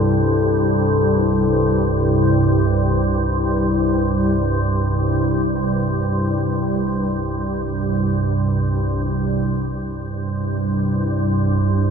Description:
world meditative, free-time meditation music; free time; A4 = 440 Hz
organ-like drone; drone; 0.0-11.9 s; C2 to G2; -17 LUFS; right 1 dB; ensemble chorus, built-in reverb
glass harmonica; texture; 0.0-1.8 s; A4; -23 LUFS; left 6 dB
wet studio reverb, RT60 0.6 s; -17 LUFS; side -6 dB against mid
0.0-11.9 A section

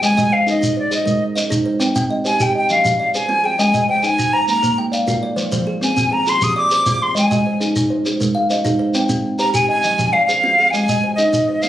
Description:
southern african traditional, mbira-style interlocking cycle; 134 BPM (dotted quarters); 12/8; straight; A4 = 440 Hz
bright silver concert flute; melody; 0.0-11.7 s; D5 to Eb6; -16 LUFS; left 1 dB
kalimba; arpeggios; 0.0-11.7 s; F3 to G5; -22 LUFS; left 1 dB
kalimba; arpeggios; 0.0-11.7 s; F3 to G5; -21 LUFS; right 3 dB
shekere; percussion; 0.0-11.7 s; -23 LUFS; equal
wet studio reverb, RT60 0.6 s; recorded on a phone in the room, club reverb, compression; -14 LUFS; side -12 dB against mid
0.0-11.7 A section
0.0 Ab; 1.8 Cm; 2.7 Fm; 3.6 Ab; 4.5 Bb; 5.4 Fm; 7.2 Ab; 8.9 Cm; 9.8 Fm; 10.7 Ab

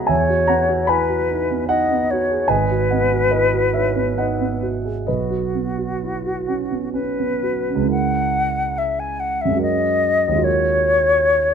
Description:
classical, impressionist duo for flute and grand piano; 57-77 BPM; 3/4; rubato; C# dorian; A4 = 440 Hz
concert flute; melody; 0.0-11.5 s; F#4 to G#5; -20 LUFS; left 3 dB
dark concert grand piano; accompaniment; 0.0-11.5 s; G#1 to B5; -20 LUFS; right 3 dB
moderate stone room reverb, RT60 1.0 s; close, detailed microphones; -17 LUFS; side -7 dB against mid
0.0-7.9 A section; 7.9-11.5 B section
0.1 Emaj9; 2.5 G#m7; 5.1 Badd9; 7.9 C#m6; 9.6 F#69; 10.5 D#m11

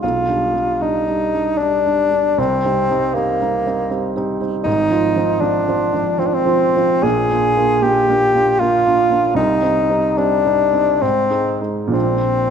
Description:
classical, romantic duo for bassoon and grand piano; 63-80 BPM; 3/4; rubato; A4 = 442 Hz
warm bassoon; melody; 0.0-12.5 s; Bb3 to Ab4; -16 LUFS; left 2 dB
dark baby grand piano; accompaniment; 0.0-12.5 s; Ab1 to F4; -19 LUFS; right 4 dB
wet recital hall reverb, RT60 1.6 s; -14 LUFS; side -7 dB against mid
0.0-12.5 A section
0.0 G7/B; 2.4 Cm; 4.7 Fm/Ab; 7.0 Bb7; 9.4 Cm; 11.0 Ab; 11.9 Bb

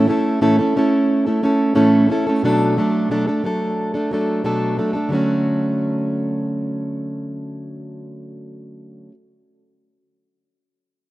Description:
pop; 90 BPM; 4/4; straight; D major; A4 = 439 Hz
fingerpicked plugged-in steel-string acoustic guitar; accompaniment; 0.0-9.1 s; A2 to A4; -17 LUFS; right 1 dB
moderate lush hall reverb, RT60 3.2 s; rough home demo mix; -16 LUFS; side -16 dB against mid
0.0-5.1 A section; 5.1-7.8 B section
0.0 A; 2.4 Bm7; 5.1 Dmaj7

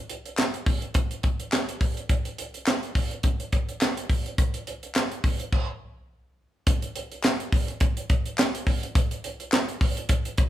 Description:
funk; 105 BPM; 4/4; swing 56% on 16ths
tight funk drum kit; drums; 0.1-10.5 s; crash cymbal, handclaps, hi-hat, kick drum, snare drum; -24 LUFS; equal
group handclap; percussion; 0.4-9.7 s; -35 LUFS; left 3 dB
light reverb; band playing live in one room; -24 LUFS; side -13 dB against mid
0.0-6.7 A section; 6.7-10.5 B section
stop 5.5-6.7

